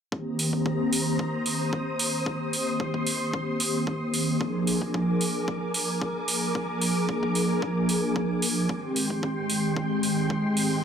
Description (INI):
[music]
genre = nu-disco, nu disco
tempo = 112 BPM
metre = 4/4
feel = straight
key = C minor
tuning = A4 = 443 Hz
[part]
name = warm analog pad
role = accompaniment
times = 0.1-10.8 s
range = Eb3 to Ab4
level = -26 LUFS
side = equal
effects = chorus, sidechain pumping, tape echo
[part]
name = string machine, full ensemble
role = sustained chords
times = 0.1-10.8 s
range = Ab3 to Eb6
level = -31 LUFS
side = equal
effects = ensemble chorus, sidechain pumping
[part]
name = electronic kick drum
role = drums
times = 0.1-10.4 s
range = none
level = -33 LUFS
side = left 1 dB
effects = high-pass filter on kick
[part]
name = electronic hi-hat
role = drums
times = 0.4-10.7 s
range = none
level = -29 LUFS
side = right 2 dB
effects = none
[sound]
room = light reverb, digital ambience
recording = dry, gritty hardware recording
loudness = -24 LUFS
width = side -7 dB against mid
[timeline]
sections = 0.1-10.8 A section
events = none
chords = 0.1 Cm7; 4.4 Bb7; 8.7 Abmaj7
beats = | 0.12 0.66 1.19 1.73 | 2.26 2.80 3.33 3.87 | 4.41 4.94 5.48 6.01 | 6.55 7.08 7.62 8.16 | 8.69 9.23 9.76 10.30 | 10.84